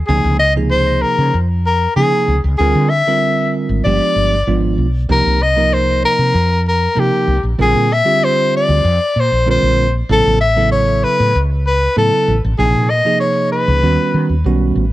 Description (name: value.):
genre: electric jazz fusion.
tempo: 96 BPM.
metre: 4/4.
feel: straight.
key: unclear.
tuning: A4 = 440 Hz.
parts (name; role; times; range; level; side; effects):
breathy soprano saxophone; melody; 0.1-14.4 s; G4 to Fb5; -15 LUFS; left 2 dB; none.
bell-like tine electric piano; accompaniment; 0.1-14.8 s; C3 to Bb4; -18 LUFS; right 4 dB; none.
woody fretless electric bass; bass; 0.1-14.9 s; G1 to Eb3; -16 LUFS; equal; lush chorus.
room: light reverb.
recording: none.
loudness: -12 LUFS.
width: side -15 dB against mid.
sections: 0.0-14.9 A section.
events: none.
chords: 0.1 Dbmaj9; 2.6 Dm7b5; 3.8 G7b9; 5.1 Cm7; 7.6 Bbadd9; 10.1 A6; 12.6 Bbm7; 13.8 Eb7alt.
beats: | 0.09 0.72 1.34 1.97 | 2.59 3.22 3.85 4.47 | 5.10 5.72 6.35 6.97 | 7.60 8.22 8.85 9.47 | 10.09 10.72 11.34 11.96 | 12.59 13.21 13.83 14.45.